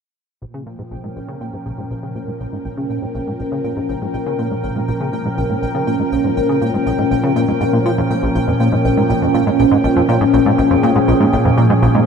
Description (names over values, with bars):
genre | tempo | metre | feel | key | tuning
ambient, sequencer-driven space music | 121 BPM | 4/4 | straight | Bb dorian | A4 = 440 Hz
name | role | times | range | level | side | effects
phased analog pad | sustained chords | 0.4-12.1 s | Bb2 to Bb4 | -17 LUFS | equal | phaser, chorus
plucky analog bass | riff | 0.4-12.0 s | Bb1 to F3 | -19 LUFS | equal | wide subtle chorus, analog delay
pulsing gated texture | texture | 1.0-12.1 s | G5 | -27 LUFS | right 3 dB | chorus, built-in reverb
room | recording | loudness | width
wet huge ambient reverb, RT60 9.3 s | none | -14 LUFS | side -6 dB against mid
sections
0.4-12.1 A section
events
fade-in on analog synth bass 0.4-12.1; fade-in on analog synth pad 0.4-12.1; fade-in on synth texture 0.4-12.1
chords
0.4 Bbm